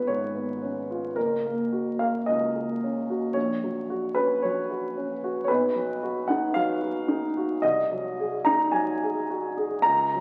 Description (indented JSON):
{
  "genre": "classical, romantic nocturne for solo piano",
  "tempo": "52-57 BPM",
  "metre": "4/4",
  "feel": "rubato",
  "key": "F# major",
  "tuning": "A4 = 439 Hz",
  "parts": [
    { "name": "warm baby grand piano", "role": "solo", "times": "0.0-10.2 s", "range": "F#1 to A#5", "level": "-26 LUFS", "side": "equal", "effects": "none" }
  ],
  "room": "wet recital hall reverb, RT60 1.5 s",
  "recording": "very old 78 rpm record, vinyl crackle",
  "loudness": "-26 LUFS",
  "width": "mono",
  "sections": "0.0-10.2 A section",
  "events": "none",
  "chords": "0.0 C#7/G#; 1.2 F#; 3.4 F#/A#; 5.5 B; 7.6 G#7/B#",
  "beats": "0.09 | 1.16 2.28 3.35 4.42 | 5.49 6.55 7.62 8.74 | 9.85"
}